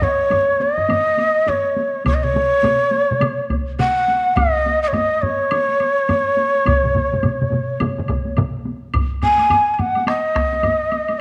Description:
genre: japanese traditional, taiko drum ensemble.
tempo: 105 BPM.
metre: 4/4.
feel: swing 60% on 16ths.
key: unclear.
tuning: A4 = 440 Hz.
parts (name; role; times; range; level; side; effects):
breathy mellow shakuhachi; melody; 0.0-11.2 s; C#5 to G#5; -19 LUFS; equal; none.
taiko ensemble; percussion; 0.0-11.2 s; none; -30 LUFS; equal; none.
taiko ensemble; percussion; 0.0-10.8 s; none; -28 LUFS; equal; none.
woodblock; percussion; 0.3-11.2 s; none; -31 LUFS; equal; none.
solo taiko drums; percussion; 2.1-10.5 s; none; -26 LUFS; equal; none.
taiko ensemble; percussion; 2.1-8.5 s; none; -26 LUFS; equal; none.
room: wet echo chamber reverb, RT60 1.5 s, studio reverb.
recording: none.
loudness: -18 LUFS.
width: mono.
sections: 0.0-8.9 A section; 8.9-11.2 B section.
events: speeding up 0.0-11.2.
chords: none.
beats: 0.31 0.89 1.48 | 2.06 2.64 3.22 3.79 | 4.37 4.95 5.52 6.09 | 6.67 7.24 7.81 8.38 | 8.94 9.51 10.07 10.64 | 11.20.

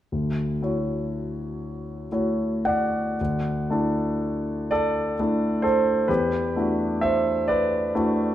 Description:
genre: classical, impressionist solo piano.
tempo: 35-44 BPM (dotted quarters).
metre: 6/8.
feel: rubato.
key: D major.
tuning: A4 = 444 Hz.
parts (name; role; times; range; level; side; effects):
clear concert grand piano; solo; 0.1-8.3 s; D2 to F#5; -22 LUFS; equal; none.
room: moderate recital hall reverb, RT60 1.8 s.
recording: dark, warm production.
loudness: -22 LUFS.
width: side -12 dB against mid.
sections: 0.1-3.2 A section; 3.2-8.3 B section.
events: none.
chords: 0.1 Dmaj9; 3.2 Dadd9; 6.1 Em11.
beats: | 0.11 1.61 | 3.19 4.71 | 6.09 7.49.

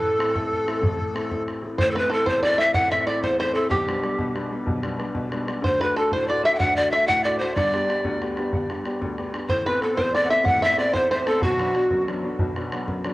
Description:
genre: celtic folk, Celtic slide.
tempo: 124 BPM (dotted quarters).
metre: 12/8.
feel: straight.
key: A dorian.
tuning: A4 = 440 Hz.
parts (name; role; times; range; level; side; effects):
breathy bright large pan pipes; melody; 0.0-12.1 s; F#4 to G5; -22 LUFS; equal; cassette tape, tape echo.
accordion; second line; 0.0-1.4, 9.5-12.0 s; F#4 to F#5; -29 LUFS; left 1 dB; cassette tape.
bluegrass banjo; second line; 0.0-12.0 s; F#4 to F#5; -26 LUFS; right 1 dB; cassette tape.
clear upright piano; accompaniment; 0.0-13.1 s; G1 to G4; -28 LUFS; left 1 dB; cassette tape.
bodhran; percussion; 0.2-13.1 s; none; -30 LUFS; equal; none.
room: moderate spring reverb, RT60 1.9 s, small room ambience.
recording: home recording on cassette.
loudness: -20 LUFS.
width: side -19 dB against mid.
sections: 0.0-1.8 A section; 1.8-13.1 B section.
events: none.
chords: 0.0 Am; 3.7 G/B; 5.6 D; 7.6 G; 9.5 Amadd9; 11.4 Bm.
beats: 0.34 0.82 1.30 | 1.78 2.26 2.74 3.23 | 3.71 4.19 4.67 5.15 | 5.63 6.11 6.59 7.08 | 7.56 8.04 8.52 9.01 | 9.49 9.97 10.45 10.94 | 11.42 11.90 12.39 12.87.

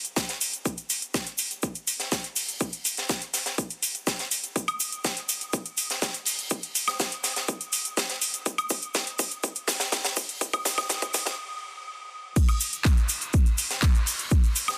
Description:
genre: house.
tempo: 123 BPM.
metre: 4/4.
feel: straight.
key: none.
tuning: none.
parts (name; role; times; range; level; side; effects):
house drum kit; drums; 0.0-14.8 s; crash cymbal, handclaps, hi-hat, woodblock; -31 LUFS; equal; sidechain pumping on hats, sidechain pumping on perc, sidechain pumping on cymbals.
tube shaker; percussion; 0.0-14.8 s; none; -35 LUFS; equal; none.
crisp fusion drum kit; drums; 0.2-14.8 s; hi-hat, shaker, snare drum; -34 LUFS; equal; sidechain pumping on hats, high-pass filter on hats, high-pass filter on snare, sidechain pumping on perc, high-pass filter on perc, high-pass filter on room.
electronic kick drum; drums; 0.2-14.4 s; none; -27 LUFS; equal; high-pass filter on kick, high-pass filter on room.
room: light reverb.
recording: dense, heavily limited modern master, high-pass filter.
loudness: -27 LUFS.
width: mono.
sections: 0.0-12.4 A section; 12.4-14.8 B section.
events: build-up 0.0-12.4; drum fill 4.6-11.4; stop 11.4-12.4; drop 12.4-14.8.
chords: none.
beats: 0.17 | 0.66 1.14 1.63 2.12 | 2.61 3.09 3.58 4.07 | 4.56 5.04 5.53 6.02 | 6.51 7.00 7.48 7.97 | 8.46 8.95 9.44 9.92 | 10.41 10.90 11.39 11.88 | 12.36 12.85 13.34 13.83 | 14.31.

